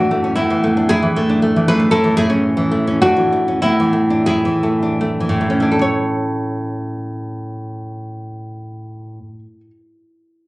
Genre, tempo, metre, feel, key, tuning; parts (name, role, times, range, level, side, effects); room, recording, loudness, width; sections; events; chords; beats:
romantic piece for solo classical guitar; 69-122 BPM; 3/4; rubato; A major; A4 = 442 Hz
nylon-string guitar; solo; 0.0-9.7 s; A2 to C#5; -15 LUFS; equal
moderate studio reverb, RT60 0.5 s; recorded on a phone in the room, club reverb; -14 LUFS; side -21 dB against mid
0.0-5.8 A section; 5.8-10.5 B section
slowing down 1.2-5.8
0.4 E7/A; 1.9 A; 3.6 E7/A; 5.8 A
| 0.38 0.90 1.43 | 1.93 2.45 3.02 | 3.64 4.27 4.99 | 5.82 6.62 7.41 | 8.21 9.00